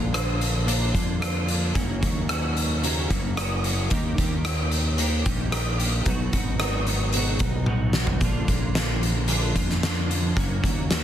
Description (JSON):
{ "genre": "quiet-loud alternative rock", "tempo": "111 BPM", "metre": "4/4", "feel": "straight", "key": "unclear", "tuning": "A4 = 440 Hz", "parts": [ { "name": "clean electric guitar", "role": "arpeggios", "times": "0.0-11.0 s", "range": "Gb2 to G4", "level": "-30 LUFS", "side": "right 2 dB", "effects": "ensemble chorus" }, { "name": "fuzz fingered electric bass", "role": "bass", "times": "0.0-11.0 s", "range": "Gb1 to F2", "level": "-26 LUFS", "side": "equal", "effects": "overdrive" }, { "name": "oversized low-tuned drum kit", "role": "drums", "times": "0.1-11.0 s", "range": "hi-hat, kick drum, rim click, snare drum, toms", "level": "-25 LUFS", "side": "equal", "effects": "soft clipping on snare" } ], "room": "little or no reverb", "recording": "dense, heavily limited modern master", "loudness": "-22 LUFS", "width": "side -10 dB against mid", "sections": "0.0-11.0 A section", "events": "drum fill 7.7-8.2", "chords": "0.0 Bb; 1.8 Gb; 3.9 Eb; 6.1 B; 8.2 Bb; 10.4 Gb" }